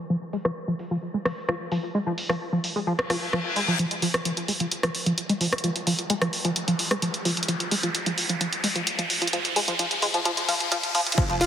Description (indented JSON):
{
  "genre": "driving peak-time techno",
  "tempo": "130 BPM",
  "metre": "4/4",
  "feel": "straight",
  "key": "F minor",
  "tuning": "A4 = 439 Hz",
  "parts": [
    { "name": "tight sequenced synth", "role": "riff", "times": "0.1-11.5 s", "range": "F3 to F4", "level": "-26 LUFS", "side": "equal", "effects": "chorus, overdrive, cassette tape, sidechain pumping, tape echo" },
    { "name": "punchy analog drum machine", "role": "drums", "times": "0.3-11.5 s", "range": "crash cymbal, hi-hat, ride cymbal, rim click", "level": "-27 LUFS", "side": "equal", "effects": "sidechain pumping on hats, low-pass filter on hats, low-pass filter on snare, sidechain pumping on cymbals, low-pass filter on cymbals, low-pass filter on room" },
    { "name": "reverse cymbal and riser", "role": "sound effects", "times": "3.1-11.2 s", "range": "none", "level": "-30 LUFS", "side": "left 1 dB", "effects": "none" },
    { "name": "electronic kick drum", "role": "drums", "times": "11.2-11.3 s", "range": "none", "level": "-24 LUFS", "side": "equal", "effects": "none" },
    { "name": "saturated sub bass", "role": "bass", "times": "11.3-11.5 s", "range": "F1", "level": "-34 LUFS", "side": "equal", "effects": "sidechain pumping, low-pass filter" }
  ],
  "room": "moderate huge ambient reverb, RT60 4.9 s",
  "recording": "heavily compressed radio sound, high-pass filter, low-pass filter",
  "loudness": "-23 LUFS",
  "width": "side -9 dB against mid",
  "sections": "0.0-3.8 A section; 3.8-11.2 B section",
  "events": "filter sweep on drum 0.0-3.8; filter sweep on synth arpeggio sound 0.0-3.8, 3.8-11.2; filter sweep 0.0-3.8; reverse cymbal 3.1-3.8; build-up 3.8-11.2; riser 3.8-11.2",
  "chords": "none",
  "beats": "| 0.10 0.56 1.02 1.49 | 1.95 2.41 2.87 3.33 | 3.79 4.25 4.72 5.18 | 5.64 6.10 6.56 7.02 | 7.49 7.95 8.41 8.87 | 9.33 9.79 10.25 10.72 | 11.18"
}